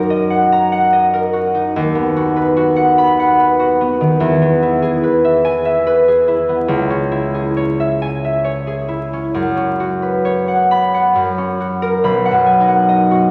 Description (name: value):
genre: classical, solo harp piece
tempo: 66-74 BPM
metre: 3/4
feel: rubato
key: B major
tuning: A4 = 440 Hz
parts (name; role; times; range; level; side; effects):
- concert harp; solo; 0.0-13.3 s; B1 to B5; -15 LUFS; equal; none
room: wet cathedral reverb, RT60 5.1 s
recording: vinyl crackle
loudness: -15 LUFS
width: mono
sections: 0.0-12.0 A section; 12.0-13.3 B section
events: none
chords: 0.0 D#m/F#; 1.8 B/D#; 4.2 E; 6.7 C#m; 9.3 F#sus4; 11.2 F#; 12.0 B